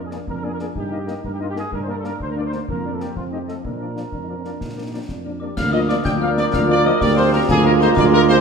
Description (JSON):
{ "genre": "military-style march for wind band", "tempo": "124 BPM (dotted quarters)", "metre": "6/8", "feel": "straight", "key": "Bb major", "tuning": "A4 = 443 Hz", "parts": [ { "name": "dark trumpet section", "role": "melody", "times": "0.0-8.4 s", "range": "F4 to G5", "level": "-24 LUFS", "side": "equal", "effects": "none" }, { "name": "clear euphonium", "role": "second line", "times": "0.0-8.4 s", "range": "Bb3 to G4", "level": "-25 LUFS", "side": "right 6 dB", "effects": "none" }, { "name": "dark tuba", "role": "bass", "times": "0.0-8.4 s", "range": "D2 to Bb2", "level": "-22 LUFS", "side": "right 2 dB", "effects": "none" }, { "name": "mellow woodwind section", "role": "second line", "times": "0.1-8.4 s", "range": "Ab4 to Eb5", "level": "-30 LUFS", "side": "left 3 dB", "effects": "none" }, { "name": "mellow French horn section", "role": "accompaniment", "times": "0.1-8.4 s", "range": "F3 to F4", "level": "-28 LUFS", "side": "left 5 dB", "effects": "none" }, { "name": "concert snare drum, concert bass drum and clash cymbals", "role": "drums", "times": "0.1-8.4 s", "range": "none", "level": "-29 LUFS", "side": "left 2 dB", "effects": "none" }, { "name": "glockenspiel with hard plastic mallets", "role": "second line", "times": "5.4-8.4 s", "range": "Ab5 to G6", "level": "-24 LUFS", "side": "left 4 dB", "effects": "none" }, { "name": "dark trombone section", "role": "sustained chords", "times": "5.6-8.4 s", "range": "F3 to Bb3", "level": "-27 LUFS", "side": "right 1 dB", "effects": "none" } ], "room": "moderate scoring stage reverb, RT60 1.9 s", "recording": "none", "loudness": "-17 LUFS", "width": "side -6 dB against mid", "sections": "0.0-5.6 A section; 5.6-8.4 B section", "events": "none", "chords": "0.0 Bb/F; 0.8 Eb/G; 1.7 Gm; 2.7 Bb/F; 3.2 F7; 3.6 Bb; 5.6 Bb/D; 7.5 Bb7/D" }